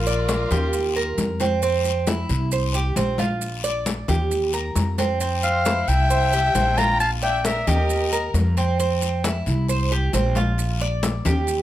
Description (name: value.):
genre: latin, Cuban son and guajira.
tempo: 134 BPM.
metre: 4/4.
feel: straight.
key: unclear.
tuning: A4 = 440 Hz.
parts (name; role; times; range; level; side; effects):
growling clarinet; melody; 0.0-1.2, 5.4-8.3 s; Bb4 to Bb5; -22 LUFS; left 2 dB; none.
clear studio violin section; second line; 0.0-1.2, 5.4-8.3 s; F4 to G5; -30 LUFS; left 3 dB; none.
Cuban tres; arpeggios; 0.0-11.6 s; C4 to D5; -25 LUFS; right 4 dB; none.
upright bass; bass; 0.0-11.6 s; Bb1 to F2; -23 LUFS; equal; none.
congas; percussion; 0.1-11.6 s; none; -27 LUFS; left 3 dB; none.
maracas; percussion; 0.1-11.6 s; none; -34 LUFS; right 6 dB; none.
guiro; percussion; 0.3-11.6 s; none; -34 LUFS; left 8 dB; none.
room: light reverb.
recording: close, detailed microphones.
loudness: -19 LUFS.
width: side -13 dB against mid.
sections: 0.0-11.6 A section.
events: none.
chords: 0.0 Bb; 0.7 Eb; 1.6 F5; 2.5 C5; 3.4 Bb; 4.3 Eb; 5.2 F5; 6.1 C7; 7.0 Bb; 7.9 Eb; 8.8 F5; 9.7 C5; 10.6 Bb.